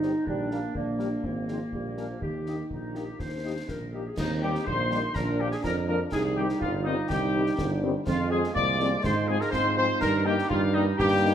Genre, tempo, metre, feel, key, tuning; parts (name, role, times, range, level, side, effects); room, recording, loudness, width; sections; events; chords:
military-style march for wind band; 123 BPM; 2/4; straight; Eb major; A4 = 440 Hz
mellow trumpet section; melody; 0.0-11.3 s; Eb4 to F5; -31 LUFS; left 1 dB
warm euphonium; second line; 0.0-11.3 s; Eb3 to F4; -33 LUFS; right 3 dB
warm woodwind section; second line; 0.0-11.3 s; Bb3 to D5; -33 LUFS; left 2 dB
mellow French horn section; accompaniment; 0.0-11.3 s; Eb3 to Ab4; -34 LUFS; left 6 dB
warm tuba; bass; 0.0-11.3 s; G1 to Ab2; -30 LUFS; right 3 dB
concert snare drum, concert bass drum and clash cymbals; drums; 0.0-11.3 s; -36 LUFS; left 1 dB
bright wooden piccolo; second line; 4.2-11.3 s; Eb5 to D6; -35 LUFS; left 4 dB
dark trombone section; sustained chords; 4.2-11.3 s; F3 to F4; -35 LUFS; right 1 dB
wet recital hall reverb, RT60 1.4 s; -25 LUFS; side -9 dB against mid
0.0-4.2 A section; 4.2-11.3 A section
0.3 Gm/Bb; 1.2 Ab; 1.7 Bb7; 2.2 Eb; 5.2 Bb; 6.1 Cm; 8.1 Fm; 9.0 Fm/Ab; 10.0 Eb/G